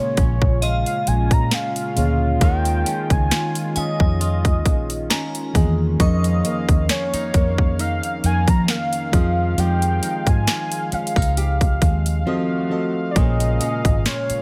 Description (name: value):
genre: contemporary R&B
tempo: 67 BPM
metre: 4/4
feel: swing 54% on 16ths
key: F minor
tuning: A4 = 441 Hz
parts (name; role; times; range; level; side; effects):
- warm velvety synth lead; melody; 0.0-14.4 s; Db5 to Bb5; -28 LUFS; equal; chorus
- mellow FM electric piano; accompaniment; 0.0-14.4 s; Bb2 to Eb5; -30 LUFS; equal; chorus
- warm analog pad; sustained chords; 0.0-14.4 s; Db3 to F5; -32 LUFS; equal; chorus, sidechain pumping
- nylon-string guitar; arpeggios; 0.0-14.4 s; F2 to G4; -32 LUFS; equal; none
- glassy synth bell; texture; 0.0-7.2 s; Eb5 to Db6; -36 LUFS; equal; chorus, delay
- vintage muted fingered electric bass; bass; 0.2-14.3 s; Ab1 to F3; -23 LUFS; equal; none
- trap drum kit; drums; 0.2-14.4 s; hi-hat, kick drum, snare drum; -22 LUFS; equal; overdrive
room: digital ambience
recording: none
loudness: -20 LUFS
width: mono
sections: 0.0-14.4 A section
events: break 12.3-13.2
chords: 0.0 Bbm7; 2.4 Eb9sus4; 6.0 Db69; 9.1 Fm9; 12.3 F7b9; 13.2 Bbm7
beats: 0.62 1.52 | 2.41 3.31 4.21 5.10 | 6.00 6.89 7.79 8.68 | 9.58 10.47 11.37 12.27 | 13.16 14.06